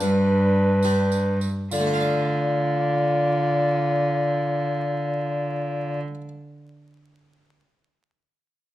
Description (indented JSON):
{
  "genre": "classical, renaissance-style consort dance",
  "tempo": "65-75 BPM (dotted quarters)",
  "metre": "6/8",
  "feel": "straight",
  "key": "D dorian",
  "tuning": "A4 = 439 Hz",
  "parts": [
    { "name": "mellow hollow tenor recorder", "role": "melody", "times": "0.0-6.0 s", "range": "B4 to D5", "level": "-25 LUFS", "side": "left 2 dB", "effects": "none" },
    { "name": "harpsichord", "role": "accompaniment", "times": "0.0-6.3 s", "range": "G2 to D5", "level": "-27 LUFS", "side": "equal", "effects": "none" },
    { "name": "mellow bassoon", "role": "accompaniment", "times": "0.0-6.0 s", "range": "D4 to F4", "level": "-27 LUFS", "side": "equal", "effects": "none" },
    { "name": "rich cello", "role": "bass", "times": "0.0-6.0 s", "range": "G2 to D3", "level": "-24 LUFS", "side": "right 1 dB", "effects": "none" },
    { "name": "tambourine", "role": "percussion", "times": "0.0-2.0 s", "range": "none", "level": "-38 LUFS", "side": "right 4 dB", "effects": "none" }
  ],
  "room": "moderate stone room reverb, RT60 1.4 s",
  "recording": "close, detailed microphones, vinyl crackle",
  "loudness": "-20 LUFS",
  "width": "side -14 dB against mid",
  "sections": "0.0-1.7 A section; 1.7-5.4 B section",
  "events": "slowing down 0.0-1.7",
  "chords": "0.0 G; 1.7 Dm"
}